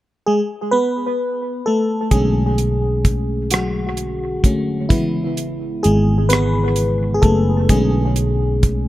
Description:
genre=slow six-eight R&B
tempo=43 BPM (dotted quarters)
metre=6/8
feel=straight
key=B dorian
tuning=A4 = 440 Hz
part: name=FM electric piano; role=accompaniment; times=0.3-8.9 s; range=C#3 to B4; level=-18 LUFS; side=equal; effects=chorus, analog delay
part: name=sustaining fretless electric bass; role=bass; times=2.1-8.9 s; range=E1 to B1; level=-18 LUFS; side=equal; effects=none
part: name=damped 70s drum kit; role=drums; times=2.1-8.8 s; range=hi-hat, kick drum, rim click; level=-18 LUFS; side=equal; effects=none
room=light reverb, small room ambience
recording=echo-heavy mix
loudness=-15 LUFS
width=side -15 dB against mid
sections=0.0-2.1 A section; 2.1-8.9 B section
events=FM electric piano solo 2.1-8.9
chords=0.0 G#m; 2.1 Bm9; 4.9 Amaj9; 7.7 Bm9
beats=0.72 | 2.12 3.52 | 4.91 6.31 | 7.70

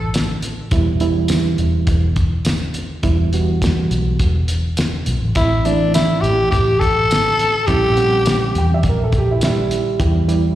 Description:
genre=straight-eighth soul blues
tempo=104 BPM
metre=4/4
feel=straight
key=E minor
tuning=A4 = 440 Hz
part: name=growling tenor saxophone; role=melody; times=0.0-0.2, 5.4-8.8 s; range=D4 to A4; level=-17 LUFS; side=left 1 dB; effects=slapback echo
part: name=vintage muted fingered electric bass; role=bass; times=0.0-10.6 s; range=E1 to E2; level=-19 LUFS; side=equal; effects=none
part: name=cloth-damped thuddy drum kit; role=drums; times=0.1-10.4 s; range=hi-hat, kick drum, snare drum, tambourine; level=-21 LUFS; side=left 1 dB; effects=none
part: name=reed electric piano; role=accompaniment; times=0.7-10.6 s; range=E3 to F#5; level=-20 LUFS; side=right 4 dB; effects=fast tremolo, slapback echo
part: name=dark upright piano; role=second line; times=8.6-10.6 s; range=G3 to G5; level=-21 LUFS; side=right 4 dB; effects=slapback echo
room=small room ambience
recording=live gig heard through the venue's PA, recital hall reverb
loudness=-14 LUFS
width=side -13 dB against mid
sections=0.0-10.6 A section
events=none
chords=0.0 N.C.; 0.7 Em; 5.4 Am; 7.7 A#dim7; 10.0 Em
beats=0.15 | 0.73 1.31 1.89 2.47 | 3.05 3.63 4.21 4.79 | 5.37 5.95 6.53 7.11 | 7.69 8.27 8.84 9.42 | 10.00

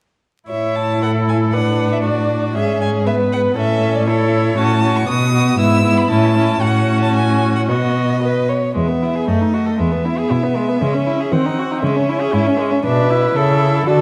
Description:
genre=quick classical-period movement for string quartet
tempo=118 BPM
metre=2/4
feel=straight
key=A major, E major from 4.6 s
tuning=A4 = 443 Hz
part: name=rich violin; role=melody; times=0.5-14.0 s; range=C#5 to E6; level=-26 LUFS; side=equal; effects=none
part: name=rich violin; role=second line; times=0.5-14.0 s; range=G#3 to C#5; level=-22 LUFS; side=equal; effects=none
part: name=rich viola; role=accompaniment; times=0.5-14.0 s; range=A3 to F#4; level=-23 LUFS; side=equal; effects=none
part: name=warm cello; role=bass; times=0.5-14.0 s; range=E2 to Eb3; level=-20 LUFS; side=equal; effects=none
room=wet recital hall reverb, RT60 1.4 s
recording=dark, warm production, vinyl crackle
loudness=-16 LUFS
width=mono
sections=0.5-8.8 A section; 8.8-14.0 B section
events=none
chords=0.5 A; 1.5 Bm7/A; 2.6 E6/G#; 3.6 A; 4.6 F#m/A; 5.1 B; 5.6 E/G#; 6.1 A; 7.7 B; 8.8 E; 9.3 D#dim/F#; 9.8 E; 10.8 C#m; 11.3 Cdim/Eb; 11.8 C#m; 12.8 E5/B; 13.4 A/C#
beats=| 0.49 1.02 | 1.53 2.04 | 2.56 3.06 | 3.57 4.07 | 4.58 5.08 | 5.59 6.10 | 6.62 7.15 | 7.69 8.23 | 8.77 9.28 | 9.80 10.31 | 10.82 11.33 | 11.84 12.34 | 12.85 13.36 | 13.87

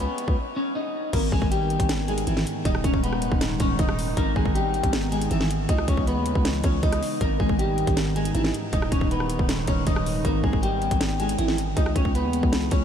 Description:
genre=hip hop, trap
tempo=158 BPM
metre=4/4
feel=half-time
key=G# harmonic minor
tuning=A4 = 440 Hz
part: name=electric guitar at the edge of break-up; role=melody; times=0.0-12.8 s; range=E3 to D#5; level=-26 LUFS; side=equal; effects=lush chorus, diffuse ambient delay
part: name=growling 808-style bass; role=bass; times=0.0-12.8 s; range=D#1 to D#2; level=-27 LUFS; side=equal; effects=none
part: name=trap drum kit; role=drums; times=0.0-12.8 s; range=crash cymbal, hi-hat, kick drum, rim click, snare drum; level=-26 LUFS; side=equal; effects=none
part: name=hollow soft pad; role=sustained chords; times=1.1-12.8 s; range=G#2 to D#4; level=-30 LUFS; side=equal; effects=chorus
room=moderate huge ambient reverb, RT60 6.9 s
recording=dreamy mix soaked in reverb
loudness=-21 LUFS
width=side -8 dB against mid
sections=0.0-1.1 A section; 1.1-12.8 B section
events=break 0.4-1.1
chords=0.0 Badd9/C#; 1.1 G#m; 2.7 D#sus4; 4.2 G#m; 5.7 C#m7; 7.2 G#m; 8.7 D#sus4; 10.2 G#m; 11.8 C#m7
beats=0.37 0.75 | 1.13 1.51 1.89 2.27 | 2.65 3.03 3.41 3.79 | 4.17 4.55 4.93 5.31 | 5.69 6.07 6.45 6.83 | 7.21 7.59 7.97 8.35 | 8.73 9.11 9.49 9.87 | 10.25 10.63 11.01 11.39 | 11.77 12.15 12.53

